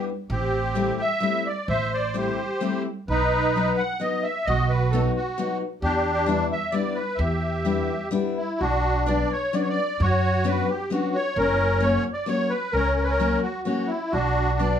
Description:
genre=musette waltz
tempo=131 BPM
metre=3/4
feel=rubato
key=E minor, B harmonic minor from 8.6 s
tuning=A4 = 440 Hz
part: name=musette accordion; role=melody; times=0.0-14.8 s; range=C4 to F#5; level=-24 LUFS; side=equal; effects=none
part: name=picked steel-string acoustic guitar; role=accompaniment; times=0.0-14.8 s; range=F#3 to F#4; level=-26 LUFS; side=left 4 dB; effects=none
part: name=upright bass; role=bass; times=0.3-14.7 s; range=F#1 to F#2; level=-25 LUFS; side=right 1 dB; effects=none
room=light reverb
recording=small room ambience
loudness=-21 LUFS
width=side -8 dB against mid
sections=0.0-8.6 A section; 8.6-14.8 B section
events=none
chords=0.3 Am7; 3.1 B; 5.8 Em7; 8.6 Bmadd9; 11.4 F#; 14.1 Bm

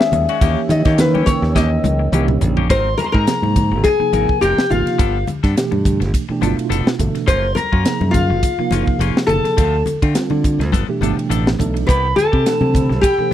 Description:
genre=electric jazz fusion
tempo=105 BPM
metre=4/4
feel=swing 55% on 16ths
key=unclear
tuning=A4 = 443 Hz
part: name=nylon-string guitar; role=melody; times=0.0-13.3 s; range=F4 to E5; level=-19 LUFS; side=left 3 dB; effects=slapback echo
part: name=mellow tine electric piano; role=accompaniment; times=0.0-13.3 s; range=B2 to A#4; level=-22 LUFS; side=right 5 dB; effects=medium stereo tremolo, analog chorus
part: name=dark analog pad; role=sustained chords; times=0.0-2.7, 12.5-13.3 s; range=C5 to E6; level=-32 LUFS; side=right 2 dB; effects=chorus
part: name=clean electric guitar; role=stabs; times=0.0-13.3 s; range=E3 to Bb4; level=-27 LUFS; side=left 14 dB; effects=lush chorus
part: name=tight funk drum kit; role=drums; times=0.0-13.2 s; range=hi-hat, kick drum, ride cymbal, snare drum, toms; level=-18 LUFS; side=equal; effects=none
part: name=modern bright fingered electric bass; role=bass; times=0.1-13.3 s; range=F1 to D#3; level=-18 LUFS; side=equal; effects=none
part: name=congas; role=percussion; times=0.1-13.3 s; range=none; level=-26 LUFS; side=left 4 dB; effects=none
part: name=raw garage guitar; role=second line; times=2.7-13.3 s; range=F5 to C6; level=-23 LUFS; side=left 2 dB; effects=overdrive
room=studio ambience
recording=dry, close 1970s-style studio recording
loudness=-14 LUFS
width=side -11 dB against mid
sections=0.0-2.7 A section; 2.7-13.3 B section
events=nylon-string guitar solo 0.0-2.7; drum fill 1.6-2.7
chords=0.4 D#7b9; 2.7 Ab69; 5.0 G9; 7.3 Gbmaj7; 9.6 Dm7; 10.7 G9; 11.9 Cmaj7

